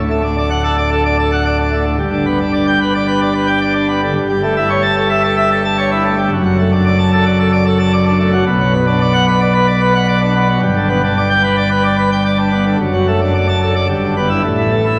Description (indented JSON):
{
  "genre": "classical, organ toccata",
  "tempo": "111 BPM",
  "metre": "4/4",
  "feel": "straight",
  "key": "D major",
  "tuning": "A4 = 441 Hz",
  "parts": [
    { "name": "pipe organ, plenum", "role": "solo", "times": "0.0-15.0 s", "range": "D1 to A5", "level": "-14 LUFS", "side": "equal", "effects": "none" }
  ],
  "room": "wet church reverb, RT60 2.8 s",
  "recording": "none",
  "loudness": "-14 LUFS",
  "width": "mono",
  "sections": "0.0-15.0 A section",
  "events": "none",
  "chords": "0.0 D; 2.0 G; 4.2 A7/G; 6.3 D/F#; 8.5 Bm; 10.6 G; 12.8 D/F#; 13.9 Em7/G; 14.4 A5"
}